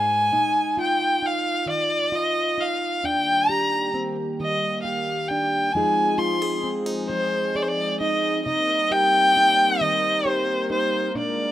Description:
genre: acoustic folk-pop ballad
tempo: 44 BPM (dotted quarters)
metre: 6/8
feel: straight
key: unclear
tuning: A4 = 441 Hz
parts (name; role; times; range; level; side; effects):
- warm violin; melody; 0.0-11.5 s; C5 to C6; -21 LUFS; equal; none
- fingerpicked plugged-in steel-string acoustic guitar; accompaniment; 0.0-11.5 s; Eb2 to Ab4; -28 LUFS; right 1 dB; none
- brassy analog pad; sustained chords; 3.0-11.5 s; Eb3 to Bb4; -31 LUFS; equal; chorus
room: light reverb, small room ambience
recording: rough home demo mix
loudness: -20 LUFS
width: side -13 dB against mid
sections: 0.0-11.5 A section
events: none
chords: 0.3 Bbsus4; 3.0 Ebmaj7; 5.7 Fm7; 8.4 Cm7

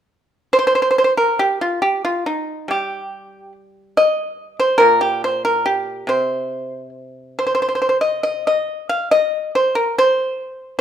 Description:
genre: chinese traditional, Chinese solo plucked strings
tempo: 71 BPM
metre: 2/4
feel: rubato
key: unclear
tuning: A4 = 440 Hz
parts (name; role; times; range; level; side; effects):
- pipa; solo; 0.5-10.8 s; Bb2 to F5; -16 LUFS; equal; none
room: light reverb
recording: minimal, uncompressed stereo recording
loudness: -16 LUFS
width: side -9 dB against mid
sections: 0.0-1.4 A section; 1.4-10.8 B section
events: none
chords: none

